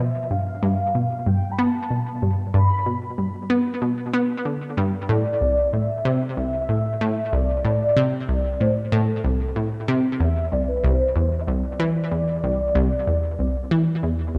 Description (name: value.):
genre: ambient, sequencer-driven space music.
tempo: 94 BPM.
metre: 4/4.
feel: straight.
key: unclear.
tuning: A4 = 440 Hz.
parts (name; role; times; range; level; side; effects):
mellow horn-like synth lead; melody; 0.0-14.4 s; A4 to B5; -28 LUFS; equal; ensemble chorus, tape echo.
analog pluck; riff; 0.0-14.4 s; C2 to B3; -23 LUFS; equal; chorus, tape echo.
room: wet plate reverb, RT60 2.5 s.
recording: dark, warm production.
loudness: -22 LUFS.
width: mono.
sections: 0.0-14.4 A section.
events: none.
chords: 0.0 G; 5.1 Am; 10.2 Csus2.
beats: 0.63 1.26 1.90 | 2.54 3.18 3.82 4.46 | 5.09 5.73 6.37 7.01 | 7.65 8.29 8.92 9.56 | 10.20 10.84 11.48 12.12 | 12.75 13.39 14.03.